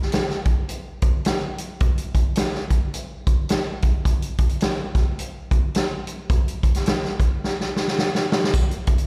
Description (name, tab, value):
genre	soul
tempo	107 BPM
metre	4/4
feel	swing 60% on 8ths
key	none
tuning	none
part	swinging big-band drum kit	drums	0.0-9.1 s	hi-hat, kick drum, snare drum	-22 LUFS	equal	none
part	tambourine	percussion	8.5-8.7 s	none	-42 LUFS	equal	slapback echo
room	light reverb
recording	live gig heard through the venue's PA, recital hall reverb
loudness	-22 LUFS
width	mono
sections	0.0-9.1 A section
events	drum fill 7.4-8.5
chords	none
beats	0.13 0.69 1.25 | 1.81 2.37 2.93 3.49 | 4.05 4.62 5.18 5.74 | 6.30 6.86 7.42 7.98 | 8.54